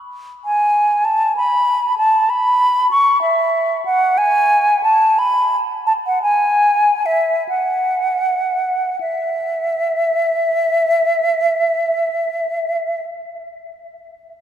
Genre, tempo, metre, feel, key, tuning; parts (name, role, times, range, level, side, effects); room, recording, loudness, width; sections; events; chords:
classical, baroque-style fantasia for unaccompanied flute; 37-66 BPM (dotted quarters); 6/8; rubato; E major; A4 = 441 Hz
mellow silver concert flute; solo; 0.4-13.0 s; E5 to C#6; -14 LUFS; equal
wet cathedral reverb, RT60 5.0 s; minimal, uncompressed stereo recording; -14 LUFS; side -10 dB against mid
0.0-9.0 A section; 9.0-14.4 B section
slowing down 3.2-9.0